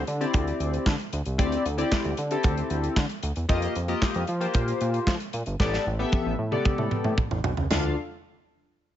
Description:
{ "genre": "early-eighties boogie funk", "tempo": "114 BPM", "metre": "4/4", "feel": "straight", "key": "D minor", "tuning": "A4 = 439 Hz", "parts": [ { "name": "fat analog bass", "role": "bass", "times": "0.0-8.0 s", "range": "G1 to F3", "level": "-28 LUFS", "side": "right 1 dB", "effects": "none" }, { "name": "modern studio drum kit", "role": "drums", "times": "0.1-7.8 s", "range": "crash cymbal, handclaps, hi-hat, kick drum, snare drum, toms", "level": "-27 LUFS", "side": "right 1 dB", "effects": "none" }, { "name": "chorused polysynth", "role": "accompaniment", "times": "0.2-8.0 s", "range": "Bb3 to F5", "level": "-28 LUFS", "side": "left 3 dB", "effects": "none" } ], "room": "light reverb, small room ambience", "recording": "nothing above 7.7 kHz", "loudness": "-24 LUFS", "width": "side -11 dB against mid", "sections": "0.0-7.7 A section; 7.7-9.0 B section", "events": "drum fill 5.6-7.7", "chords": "0.0 D9sus4; 3.5 F9sus4; 5.6 A9sus4; 7.7 Dm", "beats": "0.34 0.86 | 1.39 1.92 2.44 2.97 | 3.50 4.02 4.55 5.08 | 5.60 6.13 6.65 7.18 | 7.71" }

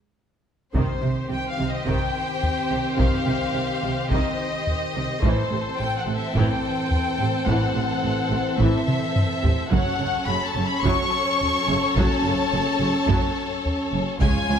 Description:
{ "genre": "cinematic, epic orchestral film score", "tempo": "107 BPM", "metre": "4/4", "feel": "straight", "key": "unclear", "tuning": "A4 = 440 Hz", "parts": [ { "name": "warm studio violin section", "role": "melody", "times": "0.7-14.6 s", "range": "C5 to C#6", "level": "-27 LUFS", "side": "left 3 dB", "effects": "none" }, { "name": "dark symphonic viola section", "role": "accompaniment", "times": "0.7-14.6 s", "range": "C3 to C#4", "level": "-30 LUFS", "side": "right 2 dB", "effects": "none" }, { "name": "mellow French horn section", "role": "sustained chords", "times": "0.7-14.6 s", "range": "Eb3 to C#4", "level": "-30 LUFS", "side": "left 2 dB", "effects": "none" }, { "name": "warm symphonic cello section", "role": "bass", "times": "0.7-14.6 s", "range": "Db2 to C3", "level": "-29 LUFS", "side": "right 3 dB", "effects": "none" }, { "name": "taiko ensemble", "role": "drums", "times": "0.7-14.6 s", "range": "none", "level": "-25 LUFS", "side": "equal", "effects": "none" }, { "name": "warm symphonic violin section", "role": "second line", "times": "0.8-14.6 s", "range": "F4 to C#5", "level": "-30 LUFS", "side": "left 3 dB", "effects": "none" }, { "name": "warm symphonic double bass section", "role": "bass", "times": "0.8-14.6 s", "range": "F#1 to Db2", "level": "-28 LUFS", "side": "right 4 dB", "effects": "none" } ], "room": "moderate scoring stage reverb, RT60 1.7 s", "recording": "none", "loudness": "-20 LUFS", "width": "side -8 dB against mid", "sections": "0.7-14.6 A section", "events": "break 0.0-0.7; drum fill 0.0-0.7, 8.9-9.7", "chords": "0.0 N.C.; 0.7 Cm; 5.2 Am; 9.7 F#m", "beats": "0.18 | 0.74 1.31 1.87 2.43 | 2.99 3.55 4.11 4.67 | 5.23 5.79 6.35 6.91 | 7.47 8.04 8.60 9.16 | 9.72 10.28 10.84 11.40 | 11.96 12.52 13.08 13.64 | 14.20" }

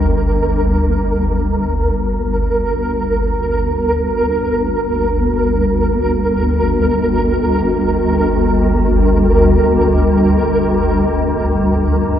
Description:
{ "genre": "dark ambient drone", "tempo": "free time", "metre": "none", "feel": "none", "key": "unclear", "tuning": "A4 = 439 Hz", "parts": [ { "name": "swarming drone", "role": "drone", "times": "0.0-12.2 s", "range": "G1 to D2", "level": "-14 LUFS", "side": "equal", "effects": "built-in reverb" }, { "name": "flickering grainy texture", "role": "texture", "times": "0.0-12.2 s", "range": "Bb4", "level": "-18 LUFS", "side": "right 2 dB", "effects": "built-in reverb" } ], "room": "wet echo chamber reverb, RT60 2.1 s", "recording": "none", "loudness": "-13 LUFS", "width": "side -10 dB against mid", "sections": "0.8-12.2 A section", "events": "none", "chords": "0.0 Gm", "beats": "free time" }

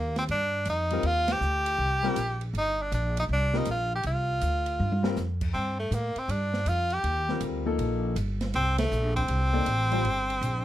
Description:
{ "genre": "modal jazz", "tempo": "160 BPM", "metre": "4/4", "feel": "swing 66% on 8ths", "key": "C dorian", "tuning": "A4 = 440 Hz", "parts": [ { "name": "bright tenor saxophone", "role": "melody", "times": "0.0-10.6 s", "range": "A3 to G4", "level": "-28 LUFS", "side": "equal", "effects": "none" }, { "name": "upright bass", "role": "bass", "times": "0.0-10.6 s", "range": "G1 to A2", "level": "-29 LUFS", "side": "equal", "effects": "none" }, { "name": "open jazz drum kit", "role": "drums", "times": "0.2-10.5 s", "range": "crash cymbal, hi-hat, kick drum, ride cymbal, snare drum, toms", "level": "-37 LUFS", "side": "right 2 dB", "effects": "none" }, { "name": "clear grand piano", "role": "accompaniment", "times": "0.9-10.0 s", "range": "F3 to D5", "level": "-30 LUFS", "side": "left 5 dB", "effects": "none" } ], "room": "light reverb", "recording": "close, detailed microphones", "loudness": "-25 LUFS", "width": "side -13 dB against mid", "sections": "0.0-10.6 A section", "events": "band accent 1.2, 8.7; drum fill 4.8-5.2", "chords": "0.0 Cm11", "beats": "0.29 0.67 | 1.04 1.41 1.79 2.16 | 2.54 2.91 3.29 3.66 | 4.04 4.41 4.79 5.16 | 5.54 5.91 6.29 6.66 | 7.04 7.41 7.79 8.16 | 8.54 8.91 9.29 9.67 | 10.04 10.42" }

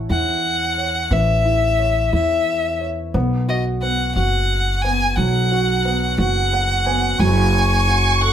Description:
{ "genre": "six-eight pop ballad", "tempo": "59 BPM (dotted quarters)", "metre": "6/8", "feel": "straight", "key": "unclear", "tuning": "A4 = 441 Hz", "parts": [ { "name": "warm upright piano", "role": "accompaniment", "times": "0.0-8.3 s", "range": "E3 to G#5", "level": "-23 LUFS", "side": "right 2 dB", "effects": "none" }, { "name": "upright bass", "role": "bass", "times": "0.0-8.3 s", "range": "F#1 to E2", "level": "-20 LUFS", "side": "equal", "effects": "none" }, { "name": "bright violin", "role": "melody", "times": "0.1-8.3 s", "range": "D#5 to G#5", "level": "-20 LUFS", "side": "left 1 dB", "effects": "none" }, { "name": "rich studio violin section", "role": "second line", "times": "7.2-8.3 s", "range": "C#6", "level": "-21 LUFS", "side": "right 1 dB", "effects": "none" } ], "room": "wet studio reverb, RT60 0.6 s", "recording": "band playing live in one room", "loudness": "-16 LUFS", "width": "side -9 dB against mid", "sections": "0.0-7.2 A section; 7.2-8.3 B section", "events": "upright piano fill 6.2-7.2", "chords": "0.0 A; 3.1 B5; 7.2 F#sus2", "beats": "0.10 | 1.11 2.13 | 3.14 4.16 | 5.17 6.19 | 7.20 8.21" }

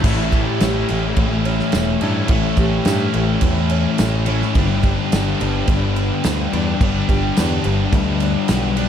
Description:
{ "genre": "rock, shoegaze and dream pop", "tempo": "107 BPM", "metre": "4/4", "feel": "straight", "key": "A mixolydian", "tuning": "A4 = 441 Hz", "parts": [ { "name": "picked twelve-string acoustic guitar", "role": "arpeggios", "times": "0.0-8.9 s", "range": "E3 to G4", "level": "-26 LUFS", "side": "right 6 dB", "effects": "wide subtle chorus, tape echo" }, { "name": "thick fuzz guitar", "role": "riff", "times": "0.0-8.9 s", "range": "G2 to A3", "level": "-21 LUFS", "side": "left 8 dB", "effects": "distortion, analog chorus" }, { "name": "tight distorted guitar", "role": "riff", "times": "0.0-8.9 s", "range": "G2 to A4", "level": "-24 LUFS", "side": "right 3 dB", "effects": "distortion" }, { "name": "picked electric bass", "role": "bass", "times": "0.0-8.9 s", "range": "E1 to G2", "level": "-21 LUFS", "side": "right 1 dB", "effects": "none" }, { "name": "loose indie drum kit", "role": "drums", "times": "0.0-8.9 s", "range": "crash cymbal, kick drum, snare drum", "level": "-21 LUFS", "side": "right 1 dB", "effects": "none" }, { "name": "tambourine", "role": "percussion", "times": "0.6-8.6 s", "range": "none", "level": "-34 LUFS", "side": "right 9 dB", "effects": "none" } ], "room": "light reverb, studio ambience", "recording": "dark, warm production", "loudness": "-16 LUFS", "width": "side -9 dB against mid", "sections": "0.0-8.9 A section", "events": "none", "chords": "0.0 A7; 4.6 G", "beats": "| 0.04 0.61 1.18 1.74 | 2.31 2.87 3.43 4.00 | 4.56 5.12 5.68 6.24 | 6.80 7.36 7.92 8.48" }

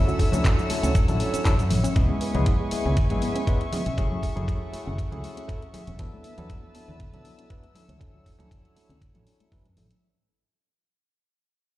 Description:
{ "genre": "nu-disco, nu disco", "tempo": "119 BPM", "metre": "4/4", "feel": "swing 53% on 16ths", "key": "unclear", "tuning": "A4 = 437 Hz", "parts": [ { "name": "tine electric piano", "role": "accompaniment", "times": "0.0-9.9 s", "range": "F#3 to B4", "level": "-31 LUFS", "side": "equal", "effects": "slow stereo tremolo, sidechain pumping, low-pass filter, analog delay" }, { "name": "dark studio string section", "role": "sustained chords", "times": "0.0-10.0 s", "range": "A3 to E6", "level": "-35 LUFS", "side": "left 1 dB", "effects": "sidechain pumping" }, { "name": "fingered electric bass", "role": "bass", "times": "0.0-9.9 s", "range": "E1 to F#2", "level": "-27 LUFS", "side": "equal", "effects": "sidechain pumping" }, { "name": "analog pluck", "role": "arpeggios", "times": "0.1-10.0 s", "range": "E3 to D4", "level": "-34 LUFS", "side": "left 2 dB", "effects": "chorus, phaser, sidechain pumping, tape echo" }, { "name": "house drum kit", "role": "drums", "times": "0.1-10.0 s", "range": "handclaps, hi-hat, shaker", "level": "-35 LUFS", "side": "equal", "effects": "small room ambience" }, { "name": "electronic kick drum", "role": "drums", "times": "0.2-9.6 s", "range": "none", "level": "-23 LUFS", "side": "equal", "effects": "small room ambience" }, { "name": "congas", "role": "percussion", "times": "0.3-9.9 s", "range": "none", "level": "-34 LUFS", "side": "right 2 dB", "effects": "none" } ], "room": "light reverb", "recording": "played on a big sound system in a bare room, large studio reverb", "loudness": "-22 LUFS", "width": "side -15 dB against mid", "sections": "0.0-10.0 A section", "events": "fade-out 0.0-10.0; filter sweep on tine electric piano 0.0-10.0; filter sweep on synth arpeggio sound 0.0-10.0", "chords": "0.0 Dmaj9; 2.0 C#m7; 4.0 F#m7; 6.0 E7sus4; 7.8 Dmaj9", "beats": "0.44 0.95 1.45 | 1.96 2.46 2.96 3.47 | 3.97 4.48 4.98 5.48 | 5.99 6.49 7.00 7.50 | 8.01 8.51 9.01 9.52" }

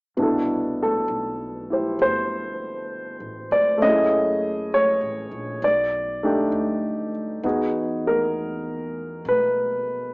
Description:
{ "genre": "jazz ballad", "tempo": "66 BPM", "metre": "4/4", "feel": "swing 66% on 8ths", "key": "unclear", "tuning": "A4 = 439 Hz", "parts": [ { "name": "warm baby grand piano", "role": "accompaniment", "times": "0.2-10.1 s", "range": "B2 to Eb5", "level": "-21 LUFS", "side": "equal", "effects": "none" }, { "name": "upright bass", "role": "bass", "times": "0.2-10.1 s", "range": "F1 to B2", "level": "-37 LUFS", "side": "equal", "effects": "none" } ], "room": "wet spring reverb, RT60 1.3 s, studio reverb", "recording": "home recording on cassette, small speaker sound", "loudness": "-20 LUFS", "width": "side -34 dB against mid", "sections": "0.2-10.1 A section", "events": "none", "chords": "0.2 Cmaj13; 3.8 F#m9; 5.6 B7alt; 7.4 Emaj9", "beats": "| 0.18 1.09 2.00 2.91 | 3.81 4.72 5.63 6.53 | 7.44 8.35 9.25" }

